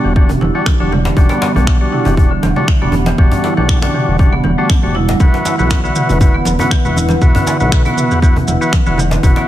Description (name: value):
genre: afro house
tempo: 119 BPM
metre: 4/4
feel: swing 54% on 16ths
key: E minor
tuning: A4 = 437 Hz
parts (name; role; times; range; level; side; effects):
- dark analog pad; sustained chords; 0.0-9.5 s; G3 to F#5; -23 LUFS; right 2 dB; chorus, sidechain pumping
- marimba with hard mallets; arpeggios; 0.0-9.5 s; D3 to E4; -18 LUFS; right 1 dB; sidechain pumping, tape echo
- overdriven tonewheel organ; stabs; 0.0-9.5 s; G3 to F#4; -19 LUFS; left 2 dB; sidechain pumping, tape echo
- smooth gliding synth bass; bass; 0.0-9.3 s; E1 to B1; -18 LUFS; equal; sidechain pumping
- electronic kick drum; drums; 0.2-9.3 s; none; -11 LUFS; equal; none
- congas; percussion; 0.2-9.1 s; none; -21 LUFS; right 2 dB; none
- house drum kit; drums; 0.3-9.3 s; finger snaps, toms; -22 LUFS; right 1 dB; none
- djembe; percussion; 0.3-9.5 s; none; -21 LUFS; left 2 dB; none
- maracas; percussion; 5.2-9.3 s; none; -27 LUFS; right 4 dB; none
room: light reverb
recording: none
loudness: -10 LUFS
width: side -13 dB against mid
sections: 0.0-9.5 A section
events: none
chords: 0.0 Em9; 5.2 D69/E (rootless)